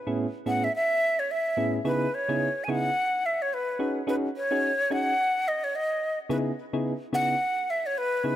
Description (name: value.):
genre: afrobeats.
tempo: 108 BPM.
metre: 4/4.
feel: swing 58% on 16ths.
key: C# minor.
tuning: A4 = 440 Hz.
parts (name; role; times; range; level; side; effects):
soft electric-piano-like synth keys; accompaniment; 0.1-8.4 s; A2 to G#4; -29 LUFS; right 1 dB; chorus, tremolo.
breathy jazz flute; melody; 0.5-8.4 s; B4 to G#5; -26 LUFS; equal; ping-pong delay.
room: light reverb.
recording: none.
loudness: -24 LUFS.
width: side -12 dB against mid.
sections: 0.0-8.4 A section.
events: none.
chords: 0.0 Amaj7; 1.9 C#m9; 3.8 G#7sus4; 6.3 C#m9.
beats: 0.18 0.74 1.30 | 1.85 2.41 2.96 3.52 | 4.07 4.63 5.18 5.74 | 6.30 6.85 7.41 7.96.